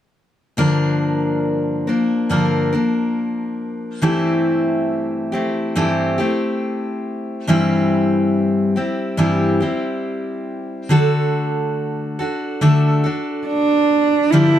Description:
acoustic folk duo or small band; 70 BPM; 4/4; straight; G dorian; A4 = 442 Hz
picked steel-string acoustic guitar; accompaniment; 0.6-14.6 s; G2 to Bb4; -17 LUFS; left 1 dB
dark cello; melody; 13.5-14.6 s; D4 to E4; -14 LUFS; right 3 dB
moderate studio reverb, RT60 0.5 s; dark, warm production; -16 LUFS; side -11 dB against mid
0.6-14.3 A section
0.6 Gm7; 4.0 Am/G; 7.5 C/G; 10.9 D
| 0.58 1.44 2.31 3.17 | 4.03 4.89 5.75 6.61 | 7.47 8.33 9.19 10.05 | 10.90 11.76 12.62 13.47 | 14.33

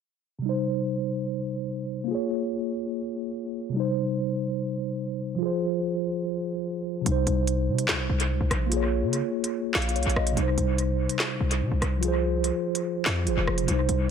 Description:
hip hop, drill; 145 BPM; 4/4; half-time; C phrygian; A4 = 440 Hz
mellow tine electric piano; accompaniment; 0.4-14.1 s; C3 to F5; -26 LUFS; right 1 dB; medium stereo tremolo
hard-hitting 808-style bass; bass; 7.1-14.1 s; F1 to Db3; -26 LUFS; equal
drill drum kit; drums; 7.1-14.0 s; handclaps, hi-hat, rim click, snare drum; -29 LUFS; equal; vintage 12-bit sampler grit, dub echo
digital ambience; echo-heavy mix, low-pass filter; -24 LUFS; side -7 dB against mid
0.4-7.1 A section; 7.1-14.1 B section
filter sweep 0.4-7.1; tine electric piano fill 9.5-10.4
0.4 Cm; 2.1 Bbm7; 3.8 Cm; 5.4 Fm; 7.1 Cm; 8.7 Bbm7; 10.4 Cm; 12.0 Fm
| 0.44 0.85 1.27 1.68 | 2.10 2.51 2.92 3.34 | 3.75 4.16 4.58 4.99 | 5.41 5.82 6.23 6.65 | 7.06 7.47 7.89 8.30 | 8.72 9.13 9.54 9.96 | 10.37 10.79 11.20 11.61 | 12.03 12.44 12.85 13.27 | 13.68 14.10

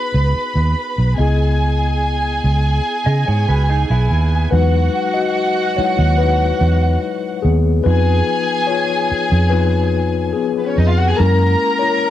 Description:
soul; 72 BPM; 4/4; straight; E major; A4 = 442 Hz
dark studio violin section; second line; 0.0-12.1 s; B3 to B5; -20 LUFS; right 1 dB; cassette tape
mellow tine electric piano; accompaniment; 0.0-12.1 s; E#3 to D#5; -21 LUFS; left 8 dB; medium stereo tremolo, cassette tape
vintage muted fingered electric bass; bass; 0.1-11.5 s; B1 to C#3; -15 LUFS; right 1 dB
electric guitar through a small old amp; riff; 3.1-4.5 s; B3 to D#5; -26 LUFS; right 10 dB; cassette tape
light reverb; home recording on cassette; -14 LUFS; side -12 dB against mid
0.0-4.5 A section; 4.5-12.1 B section
tine electric piano solo 4.5-12.1
0.0 Emaj7 (rootless); 1.2 C#m7; 4.5 Emaj9; 7.9 C#7/E#; 11.2 F#7
0.35 | 1.19 2.02 2.85 3.69 | 4.52 5.36 6.19 7.03 | 7.86 8.69 9.52 10.36 | 11.19 12.02

